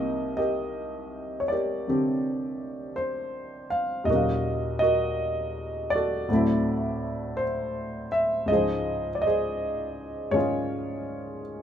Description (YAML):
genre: jazz ballad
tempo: 54 BPM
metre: 4/4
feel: swing 66% on 8ths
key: unclear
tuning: A4 = 442 Hz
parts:
  - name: warm baby grand piano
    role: solo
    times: 0.0-11.6 s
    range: C2 to F5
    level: -25 LUFS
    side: equal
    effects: none
room: light reverb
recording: minimal, uncompressed stereo recording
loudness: -25 LUFS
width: side -9 dB against mid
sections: 0.0-11.6 A section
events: none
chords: 0.0 Cm9; 4.1 Ebm9; 6.3 D9; 8.5 Dbmaj9